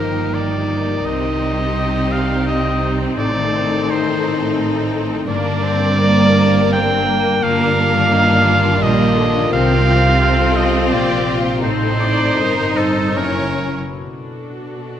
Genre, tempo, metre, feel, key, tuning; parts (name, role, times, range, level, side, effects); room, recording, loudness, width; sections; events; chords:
cinematic; 72-88 BPM; 3/4; rubato; A4 = 440 Hz
warm studio violin section; melody; 0.0-15.0 s; Eb4 to C#5; -27 LUFS; left 4 dB
bright oboe; second line; 0.0-14.0 s; A4 to G5; -20 LUFS; right 1 dB
warm symphonic violin section; second line; 0.0-13.8 s; Bb3 to F4; -26 LUFS; left 1 dB
warm symphonic viola section; accompaniment; 0.0-15.0 s; D3 to D5; -23 LUFS; right 1 dB
mellow French horn section; sustained chords; 0.0-13.6 s; F3 to F4; -23 LUFS; left 3 dB
concert harp; arpeggios; 0.0-15.0 s; F#2 to C6; -24 LUFS; left 6 dB
warm symphonic cello section; bass; 0.0-15.0 s; F#2 to C3; -22 LUFS; right 3 dB
warm symphonic double bass section; bass; 0.0-13.8 s; F#1 to C2; -22 LUFS; right 3 dB
wet scoring stage reverb, RT60 1.9 s; -14 LUFS; side -10 dB against mid
0.0-14.0 A section; 14.0-15.0 B section
0.0 Ebadd9/G; 1.1 Cm; 3.2 Adim; 5.3 Gm; 7.4 Ebadd9/G; 9.5 Cm; 11.6 Adim; 13.2 F#7; 14.0 Bm7